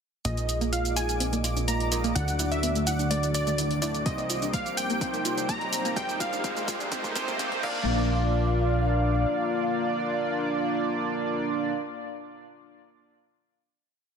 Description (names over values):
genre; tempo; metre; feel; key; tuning
progressive house; 126 BPM; 4/4; straight; Bb mixolydian; A4 = 440 Hz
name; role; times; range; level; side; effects
plucky unison lead; melody; 0.2-11.7 s; D5 to Bb5; -32 LUFS; equal; ping-pong delay
warm analog pad; sustained chords; 0.2-11.7 s; Ab3 to G5; -35 LUFS; left 4 dB; chorus, sidechain pumping
analog pluck; arpeggios; 0.2-8.1 s; A3 to F4; -35 LUFS; equal; chorus, sidechain pumping, ping-pong delay
chorused polysynth; stabs; 0.2-11.7 s; Bb2 to Eb5; -30 LUFS; right 2 dB; sidechain pumping, ping-pong delay
plucky analog bass; bass; 0.2-9.3 s; Ab1 to D2; -30 LUFS; equal; sidechain pumping
deep house drum kit; drums; 0.2-7.7 s; crash cymbal, hi-hat, shaker; -33 LUFS; equal; overdrive
riser; sound effects; 2.7-7.9 s; none; -37 LUFS; left 1 dB; none
twinkling granular texture; texture; 0.7-7.9 s; D5 to D6; -42 LUFS; left 1 dB; built-in reverb, sidechain pumping
electronic kick drum; drums; 4.1-7.7 s; none; -35 LUFS; equal; overdrive
room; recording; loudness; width
light reverb; dense, heavily limited modern master, high-pass filter; -24 LUFS; side -6 dB against mid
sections
0.2-7.9 build; 7.9-11.7 final hit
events
build-up 0.2-7.9; filter sweep on synth pluck 0.2-7.9; filter sweep on analog polysynth 0.2-7.9; filter sweep on analog synth pad 0.2-7.9; filter sweep 0.2-7.9; riser 2.7-7.9; drum fill 4.1-7.9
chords
0.2 Bb7sus4; 2.2 D; 4.1 Cm7; 6.0 Ab6; 7.6 Bb